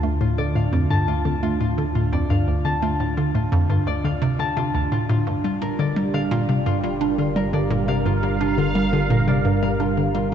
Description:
ambient, sequencer-driven space music; 86 BPM; 4/4; straight; G minor; A4 = 440 Hz
sweeping resonant pad; sustained chords; 0.0-10.3 s; D3 to A5; -26 LUFS; right 3 dB; chorus
concert harp; arpeggios; 0.0-10.3 s; F4 to A5; -28 LUFS; left 5 dB; auto-pan, tape echo
hollow square pluck; riff; 0.0-10.3 s; D2 to D4; -21 LUFS; equal; chorus, tape echo
fat analog bass; bass; 0.0-10.3 s; G1 to D2; -28 LUFS; equal
moderate cathedral reverb, RT60 6.0 s; in a vast, echoing space, nothing above 8.0 kHz; -19 LUFS; side -9 dB against mid
0.0-10.3 A section
fade-in on analog synth pad 0.0-10.3; fade-out 9.0-10.3
0.0 Dm; 5.3 Gm7

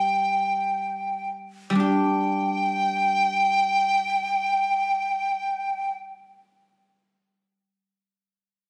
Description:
chinese traditional, Chinese chamber ensemble; free time; A4 = 439 Hz
bright large dizi; melody; 0.0-5.9 s; G5; -25 LUFS; equal
guzheng; accompaniment; 0.0-7.8 s; G3 to G4; -29 LUFS; equal
light reverb; recorded on a phone in the room, studio reverb, compression; -24 LUFS; mono
0.0-1.8 A section; 1.8-7.5 B section

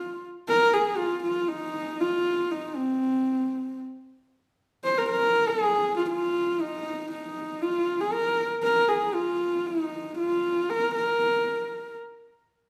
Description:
mongolian traditional; 118 BPM; 4/4; straight; F yu mode; A4 = 440 Hz
warm horsehead fiddle; melody; 0.0-11.9 s; C4 to C5; -26 LUFS; equal
wet stone room reverb, RT60 1.3 s; band playing live in one room; -26 LUFS; mono
0.5-12.7 A section

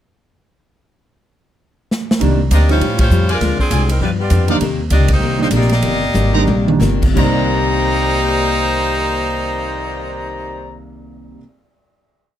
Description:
jazz, big band swing; 170-200 BPM; 4/4; swing 60% on 8ths; C minor; A4 = 440 Hz
swinging big-band drum kit; drums; 1.9-9.9 s; crash cymbal, cymbal swell, hi-hat, kick drum, ride cymbal, snare drum, toms; -20 LUFS; right 1 dB
picked steel-string acoustic guitar; accompaniment; 2.2-11.5 s; G2 to E#4; -24 LUFS; left 7 dB
warm concert grand piano; accompaniment; 2.2-11.4 s; C3 to D5; -22 LUFS; right 4 dB
upright bass; bass; 2.2-11.3 s; G1 to A2; -17 LUFS; equal
edgy saxophone section; melody; 2.5-10.7 s; F3 to Eb5; -20 LUFS; left 1 dB
bright trumpet section; stabs; 2.5-10.8 s; Eb4 to Bb5; -21 LUFS; equal
light reverb; close, detailed microphones; -13 LUFS; side -11 dB against mid
1.0-2.2 pickup bar; 2.2-7.2 A section; 7.2-10.0 final chord
drum fill 1.9, 6.2-6.8; band accent 3.0, 5.1; slowing down 4.6-7.2
1.0 N.C.; 2.2 Cm9; 2.8 A7alt; 3.4 Dm7b5; 4.0 G7; 4.6 Cm9

